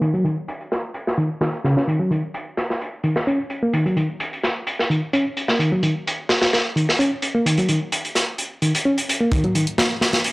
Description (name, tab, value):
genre	breakbeat, breaks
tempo	129 BPM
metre	4/4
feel	straight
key	unclear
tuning	A4 = 440 Hz
part	reed electric piano	riff	0.0-9.7 s	Db3 to Db4	-20 LUFS	equal	fast tremolo, vintage 12-bit sampler grit, low-pass filter, analog delay
part	crunchy breakbeat drum kit	drums	0.0-10.3 s	hi-hat, kick drum, snare drum	-22 LUFS	equal	high-pass filter on kick, high-pass filter on hats, high-pass filter on snare, high-pass filter on room
part	electronic hi-hat	drums	9.3-10.3 s	none	-31 LUFS	equal	low-pass filter on hats, low-pass filter on room
room	light reverb, small room ambience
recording	dry, gritty hardware recording, cassette tape, low-pass filter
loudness	-19 LUFS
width	side -23 dB against mid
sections	0.0-9.3 A section; 9.3-10.3 B section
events	filter sweep on reed electric piano 0.0-9.3, 9.3-10.3; filter sweep 0.0-9.3, 9.3-10.3; build-up 9.3-10.3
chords	none